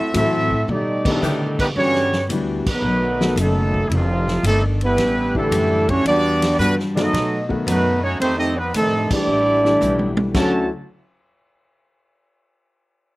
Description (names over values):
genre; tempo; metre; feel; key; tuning
jazz, big band swing; 112 BPM; 4/4; swing 68% on 8ths; D major; A4 = 435 Hz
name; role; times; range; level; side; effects
clear trumpet section; melody; 0.0-10.7 s; F#3 to A5; -21 LUFS; right 1 dB; none
mellow trombone section; second line; 0.0-10.7 s; A2 to F#4; -22 LUFS; right 1 dB; none
fingerpicked steel-string acoustic guitar; accompaniment; 0.1-10.6 s; F2 to F#4; -28 LUFS; left 2 dB; slapback echo
warm concert grand piano; accompaniment; 0.1-10.7 s; D3 to A4; -24 LUFS; left 3 dB; none
upright bass; bass; 0.1-10.7 s; F1 to D3; -24 LUFS; equal; none
vintage drum kit; drums; 0.1-10.5 s; crash cymbal, hi-hat, kick drum, ride cymbal, snare drum, toms; -26 LUFS; equal; none
clear saxophone section; sustained chords; 1.2-1.5 s; D#3 to G4; -26 LUFS; left 2 dB; none
room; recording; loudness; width
little or no reverb; recorded outdoors, with no room sound; -16 LUFS; side -20 dB against mid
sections
0.0-1.8 A section; 1.8-10.3 B section; 10.3-12.5 C section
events
drum fill 0.7-1.2, 9.8-10.3; band accent 1.0, 2.6, 9.0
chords
0.0 F#m7b5; 0.7 B7alt; 1.8 Em9; 2.8 B7; 3.9 F13; 5.0 A7sus4; 6.1 Em9; 7.1 B7; 8.2 F13; 9.3 A7sus4; 10.3 Dmaj9